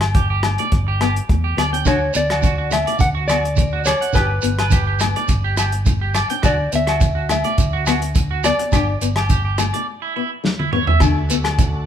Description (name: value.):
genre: highlife guitar band.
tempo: 105 BPM.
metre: 4/4.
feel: straight.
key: D major.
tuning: A4 = 439 Hz.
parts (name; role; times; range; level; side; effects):
fingered electric bass; bass; 0.0-11.9 s; G1 to E2; -22 LUFS; equal; none.
warm soul drum kit; drums; 0.0-11.7 s; hi-hat, kick drum, rim click, snare drum, toms; -20 LUFS; equal; none.
agogo bells; percussion; 0.0-11.6 s; none; -26 LUFS; left 9 dB; none.
electric guitar at the edge of break-up; arpeggios; 0.1-11.0 s; E4 to G5; -24 LUFS; right 7 dB; spring reverb.
fingerpicked steel-string acoustic guitar; accompaniment; 0.4-11.5 s; A3 to G4; -26 LUFS; left 9 dB; none.
mellow electric guitar; melody; 1.9-9.0 s; B4 to F#5; -22 LUFS; equal; none.
shekere; percussion; 1.9-11.7 s; none; -24 LUFS; right 6 dB; none.
bright tonewheel organ; sustained chords; 11.0-11.9 s; A3 to F#4; -30 LUFS; equal; slow rotary speaker, overdrive, chorus vibrato.
room: light reverb.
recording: band playing live in one room.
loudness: -16 LUFS.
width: side -9 dB against mid.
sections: 0.0-11.0 A section.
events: drum fill 10.4-11.0.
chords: 0.0 G; 1.9 D; 4.1 G; 6.4 D; 8.7 G; 9.9 A; 11.0 D.